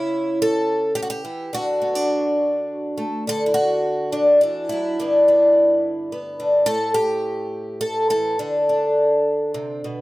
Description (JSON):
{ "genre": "folk, solo fingerstyle acoustic guitar", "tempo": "105 BPM", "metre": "3/4", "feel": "rubato", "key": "unclear", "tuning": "A4 = 442 Hz", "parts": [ { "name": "picked twelve-string acoustic guitar", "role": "solo", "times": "0.0-10.0 s", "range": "G2 to A4", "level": "-18 LUFS", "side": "equal", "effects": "none" } ], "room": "little or no reverb", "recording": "close, detailed microphones", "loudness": "-18 LUFS", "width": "side -18 dB against mid", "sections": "0.0-10.0 A section", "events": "none", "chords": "0.0 A/C#; 1.5 D; 5.0 G6; 6.7 A5; 8.4 D5", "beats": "0.37 0.94 | 1.52 2.10 2.67 | 3.26 3.84 4.42 | 4.98 5.54 6.11 | 6.67 7.24 7.80 | 8.38 8.95 9.53" }